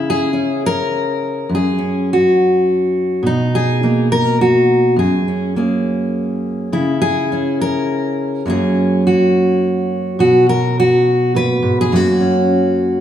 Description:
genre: folk, solo fingerstyle acoustic guitar.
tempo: 104 BPM.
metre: 3/4.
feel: straight.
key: F# mixolydian.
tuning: A4 = 439 Hz.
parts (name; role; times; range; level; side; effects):
fingerpicked steel-string acoustic guitar; solo; 0.0-13.0 s; F#2 to B4; -13 LUFS; equal; none.
room: wet recital hall reverb, RT60 1.4 s.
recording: none.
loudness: -13 LUFS.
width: side -10 dB against mid.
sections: 0.0-13.0 A section.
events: none.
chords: 0.0 C#m; 1.5 F#sus2; 3.2 Bmaj7; 5.0 F#add9; 6.7 C#m; 8.5 F#add9; 10.2 B5; 11.9 F#.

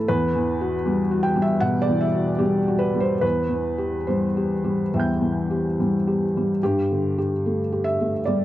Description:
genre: neoclassical minimalist piano.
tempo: 70-77 BPM.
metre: 4/4.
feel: rubato.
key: unclear.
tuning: A4 = 440 Hz.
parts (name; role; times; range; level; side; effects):
felt-muted upright piano; solo; 0.0-8.4 s; E2 to G6; -20 LUFS; equal; analog delay.
room: wet studio reverb, RT60 0.5 s.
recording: dark, warm production.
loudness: -20 LUFS.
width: side -14 dB against mid.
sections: 0.0-8.4 A section.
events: none.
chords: 0.1 Emadd9; 3.2 C/E; 6.6 Gsus2.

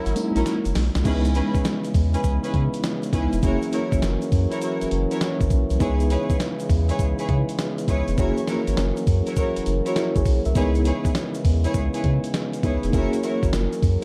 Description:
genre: R&B, new jack swing.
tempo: 101 BPM.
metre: 4/4.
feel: swing 66% on 16ths.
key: C# dorian.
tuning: A4 = 436 Hz.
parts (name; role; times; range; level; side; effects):
FM electric piano with tremolo; accompaniment; 0.0-14.0 s; G#3 to E5; -30 LUFS; equal; none.
mellow French horn section; sustained chords; 0.0-14.0 s; C#3 to A#4; -31 LUFS; equal; none.
rich studio string section; stabs; 0.0-14.0 s; C#4 to C#5; -32 LUFS; equal; tape echo.
round analog bass; bass; 0.1-14.0 s; E#1 to C#3; -25 LUFS; equal; none.
dusty soul sampler-style drum kit; drums; 0.1-14.0 s; crash cymbal, hi-hat, kick drum, snare drum, tambourine; -27 LUFS; equal; none.
tube shaker; percussion; 0.1-14.0 s; none; -49 LUFS; equal; none.
room: light reverb, studio reverb.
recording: dark, warm production.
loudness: -22 LUFS.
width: mono.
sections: 0.0-1.1 A section; 1.1-14.0 B section.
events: drum fill 0.5-1.1.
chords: 0.0 F#7; 1.1 C#m7; 3.4 F#7; 5.8 C#m7; 8.2 F#7; 10.6 C#m7; 12.9 F#7.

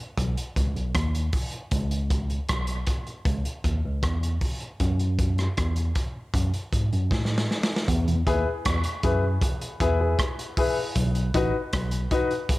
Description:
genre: dub reggae.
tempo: 78 BPM.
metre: 4/4.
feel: straight.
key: E major.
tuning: A4 = 442 Hz.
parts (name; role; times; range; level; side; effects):
tine electric piano; bass; 0.2-12.1 s; A1 to A2; -25 LUFS; equal; medium stereo tremolo.
crunchy breakbeat drum kit; drums; 0.2-12.6 s; hi-hat, kick drum, rim click, snare drum; -27 LUFS; equal; none.
mellow tonewheel organ; accompaniment; 8.1-8.2 s; E2 to B2; -29 LUFS; equal; chorus vibrato, slow rotary speaker.
dark upright piano; stabs; 8.3-12.3 s; D#4 to B4; -26 LUFS; left 3 dB; high-pass filter, dub echo.
room: light reverb, small room ambience.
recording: none.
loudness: -23 LUFS.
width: side -18 dB against mid.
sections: 0.0-7.9 A section; 7.9-12.6 B section.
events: break 0.0-7.9; drum fill 7.1-7.9.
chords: 0.0 B; 1.7 C#m; 4.8 F#m; 7.9 E; 11.0 B.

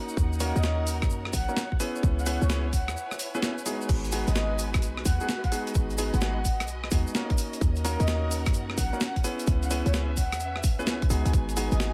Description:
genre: UK garage, two-step garage.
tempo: 129 BPM.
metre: 4/4.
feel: swing 66% on 16ths.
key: G# minor.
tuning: A4 = 444 Hz.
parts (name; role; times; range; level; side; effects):
clear concert grand piano; stabs; 0.0-11.9 s; G#3 to B4; -35 LUFS; equal; low-pass filter, digital delay.
warm studio string section; texture; 0.0-11.9 s; C#4 to G#5; -42 LUFS; equal; sidechain pumping.
tube shaker; percussion; 0.1-11.9 s; none; -41 LUFS; equal; none.
short 808-style bass; bass; 0.2-11.9 s; G#1 to F#2; -30 LUFS; equal; none.
electronic kick drum; drums; 0.2-11.5 s; none; -29 LUFS; equal; none.
breakbeat sampler-style drum kit; drums; 0.4-11.9 s; crash cymbal, hi-hat, rim click, snare drum; -36 LUFS; equal; overdrive.
breathy flute-like synth lead; melody; 0.6-11.9 s; C#5 to F#5; -38 LUFS; equal; lush chorus, digital delay.
room: digital ambience.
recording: none.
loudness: -27 LUFS.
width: mono.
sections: 0.0-11.9 A section.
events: break 3.0-3.9.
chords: 0.0 D#m7; 1.8 C#m7; 3.9 G#m7; 7.4 D#m7; 9.2 C#m7; 11.3 G#m7.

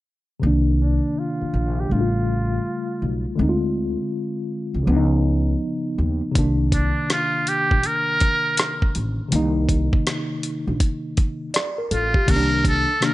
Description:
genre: hip hop, jazz-hop.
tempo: 81 BPM.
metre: 4/4.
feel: swing 65% on 16ths.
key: C dorian.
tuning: A4 = 440 Hz.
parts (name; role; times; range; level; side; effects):
tine electric piano; accompaniment; 0.4-13.1 s; C3 to D5; -23 LUFS; left 1 dB; medium stereo tremolo, low-pass filter.
upright bass; bass; 0.4-12.8 s; A1 to Eb2; -22 LUFS; equal; none.
trumpet with metal mute; melody; 0.8-13.1 s; D4 to Bb4; -23 LUFS; right 1 dB; low-pass filter, slapback echo.
dusty soul sampler-style drum kit; drums; 6.4-13.1 s; crash cymbal, hi-hat, kick drum, rim click; -21 LUFS; equal; none.
room: digital ambience.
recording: nothing above 10.8 kHz.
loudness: -19 LUFS.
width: side -17 dB against mid.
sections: 0.4-12.3 A section.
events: filter sweep 0.4-12.3.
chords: 0.4 Cm9; 1.9 A7b13; 3.4 Dm7b5; 4.9 Db9; 6.4 Cm9.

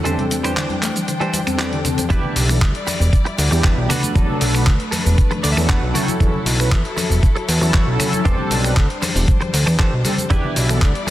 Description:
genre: nu-disco, nu disco.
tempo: 117 BPM.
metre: 4/4.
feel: straight.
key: E minor.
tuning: A4 = 440 Hz.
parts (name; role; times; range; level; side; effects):
mellow synth brass; accompaniment; 0.0-10.8 s; E2 to B4; -24 LUFS; equal; chorus, sidechain pumping, slapback echo.
rich symphonic string section; sustained chords; 0.0-11.1 s; E3 to G5; -27 LUFS; left 2 dB; sidechain pumping.
direct-recorded clean electric guitar; riff; 0.0-11.1 s; E3 to G5; -26 LUFS; right 2 dB; analog chorus, slapback echo.
tube shaker and congas; percussion; 0.0-11.1 s; none; -27 LUFS; left 2 dB; none.
soft round pluck; arpeggios; 0.1-2.1 s; D3 to C4; -27 LUFS; left 2 dB; wide subtle chorus, sidechain pumping, analog delay.
dusty soul sampler-style drum kit; drums; 0.1-11.1 s; finger snaps, handclaps, hi-hat, shaker; -23 LUFS; equal; soft clipping on snare.
fat analog bass; bass; 2.1-10.9 s; E1 to E2; -18 LUFS; equal; sidechain pumping.
electronic kick drum; drums; 2.1-10.9 s; none; -16 LUFS; equal; none.
room: light reverb.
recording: dense, heavily limited modern master.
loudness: -15 LUFS.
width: side -14 dB against mid.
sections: 0.0-2.1 A section; 2.1-11.1 B section.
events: drop 2.1-11.1; clean electric guitar fill 5.2-6.2.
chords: 0.1 D7sus4/E; 2.1 Em7; 3.9 Bm7; 5.9 F#m7; 8.3 D7sus4; 10.3 Em7.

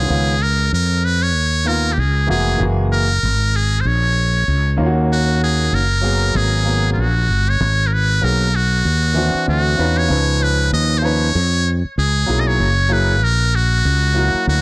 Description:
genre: hip hop, jazz-hop.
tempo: 96 BPM.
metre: 4/4.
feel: swing 57% on 16ths.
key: G# minor.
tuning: A4 = 439 Hz.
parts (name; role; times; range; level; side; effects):
trumpet with metal mute; melody; 0.0-14.6 s; E#4 to D#5; -19 LUFS; equal; analog delay.
warm concert grand piano; accompaniment; 0.0-14.6 s; D#3 to B4; -21 LUFS; equal; none.
mellow fretless electric bass; bass; 0.0-14.6 s; E#1 to E#2; -17 LUFS; equal; none.
room: little or no reverb.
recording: dry, gritty hardware recording, cassette tape.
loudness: -14 LUFS.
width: side -25 dB against mid.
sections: 0.0-7.6 A section; 7.6-14.6 B section.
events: none.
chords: 0.1 C#9; 2.0 C#6; 2.6 F#9; 4.8 D#m7; 6.3 G#m9; 9.5 D9; 10.1 C#9; 12.0 C#5; 12.6 F#7.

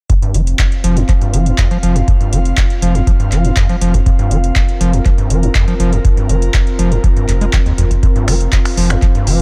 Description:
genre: acid house.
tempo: 121 BPM.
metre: 4/4.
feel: straight.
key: unclear.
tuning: A4 = 440 Hz.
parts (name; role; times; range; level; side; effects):
overdriven acid bass; riff; 0.1-9.4 s; F1 to Ab3; -20 LUFS; equal; distortion, tube saturation, vintage 12-bit sampler grit, sidechain pumping, tape echo.
booming analog drum machine; drums; 0.1-9.4 s; finger snaps, handclaps, hi-hat; -25 LUFS; equal; none.
electronic kick drum; drums; 0.1-9.1 s; none; -16 LUFS; equal; none.
airy breathy pad; texture; 0.1-9.4 s; C4 to F5; -25 LUFS; equal; chorus, sidechain pumping.
round analog bass; bass; 0.3-9.4 s; F1; -17 LUFS; equal; sidechain pumping.
room: little or no reverb.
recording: none.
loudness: -13 LUFS.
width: mono.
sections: 0.1-9.4 A section.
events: none.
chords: 0.1 F5.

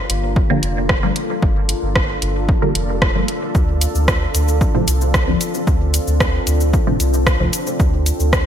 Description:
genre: dub techno.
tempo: 113 BPM.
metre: 4/4.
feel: straight.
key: G minor.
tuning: A4 = 440 Hz.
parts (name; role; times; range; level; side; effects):
deep dark ambient pad; sustained chords; 0.0-8.5 s; Bb3 to A4; -24 LUFS; equal; chorus, built-in reverb, sidechain pumping.
soft dub sub bass; bass; 0.1-8.5 s; F1 to D2; -19 LUFS; equal; tube saturation, sidechain pumping.
deep house drum kit; drums; 0.1-8.4 s; cabasa, hi-hat, rim click; -22 LUFS; equal; overdrive, studio reverb, gated reverb.
electronic kick drum; drums; 0.4-8.4 s; none; -18 LUFS; equal; overdrive, studio reverb.
filtered dub chord stab; stabs; 0.5-7.5 s; A2 to Bb3; -22 LUFS; equal; phaser, sidechain pumping, dub echo.
room: light reverb, digital ambience.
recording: bright 1980s-style digital production.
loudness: -15 LUFS.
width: side -9 dB against mid.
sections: 0.0-8.5 A section.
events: none.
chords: 0.0 Gm7; 3.5 Dm7.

